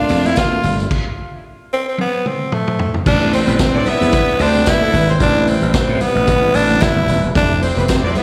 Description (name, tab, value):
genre	disco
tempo	112 BPM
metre	4/4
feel	swing 56% on 16ths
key	A minor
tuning	A4 = 440 Hz
part	growling tenor saxophone	melody	0.0-8.2 s	A3 to F4	-20 LUFS	equal	slapback echo, analog delay
part	clear studio string section	second line	0.0-8.2 s	A3 to F5	-24 LUFS	equal	slapback echo
part	tonewheel organ	sustained chords	0.0-8.2 s	C3 to B4	-26 LUFS	equal	overdrive, fast rotary speaker
part	gritty slap bass	bass	0.1-8.1 s	D#1 to A2	-20 LUFS	equal	overdrive
part	vintage drum kit	drums	0.1-8.2 s	crash cymbal, hi-hat, kick drum, snare drum, toms	-22 LUFS	equal	none
part	tambourine	percussion	0.1-8.2 s	none	-38 LUFS	equal	none
part	congas	percussion	0.3-8.2 s	none	-28 LUFS	equal	none
room	studio ambience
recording	live gig heard through the venue's PA, recital hall reverb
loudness	-15 LUFS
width	mono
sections	0.0-3.1 A section; 3.1-8.2 B section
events	stop 0.9-3.1; drum fill 2.0-3.1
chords	0.0 Bbmaj9; 0.6 G9sus4; 3.1 Am11; 7.4 Fmaj9